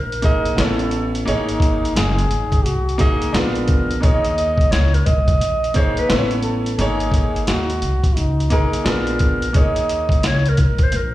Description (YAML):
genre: hip hop, jazz-hop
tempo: 87 BPM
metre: 4/4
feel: swing 64% on 16ths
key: unclear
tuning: A4 = 445 Hz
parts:
  - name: breathy clarinet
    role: melody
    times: 0.0-11.1 s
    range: A4 to Eb5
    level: -22 LUFS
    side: equal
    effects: slapback echo
  - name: upright bass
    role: bass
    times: 0.0-11.1 s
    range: Gb1 to Eb2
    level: -21 LUFS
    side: equal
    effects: none
  - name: trip hop sampler-style drum kit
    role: drums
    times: 0.1-11.1 s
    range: hi-hat, kick drum, snare drum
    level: -19 LUFS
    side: equal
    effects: none
  - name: warm grand piano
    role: accompaniment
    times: 0.2-10.5 s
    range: Bb3 to Eb5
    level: -22 LUFS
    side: right 1 dB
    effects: slapback echo
  - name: mellow trombone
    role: second line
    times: 1.3-8.7 s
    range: Eb4 to A4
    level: -26 LUFS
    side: left 2 dB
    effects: slapback echo
room: small room ambience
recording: live gig heard through the venue's PA, club reverb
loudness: -15 LUFS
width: side -15 dB against mid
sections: 0.0-11.1 A section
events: none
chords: 0.0 Eb5; 0.6 Aadd9; 1.3 Ab7sus4; 3.3 Bb7b9; 4.0 Eb5; 6.1 Aadd9; 6.8 Ab7sus4; 8.9 Bb7b9; 9.5 Eb5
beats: 0.58 | 1.27 1.96 2.65 3.34 | 4.03 4.72 5.41 6.10 | 6.79 7.47 8.16 8.85 | 9.54 10.23 10.92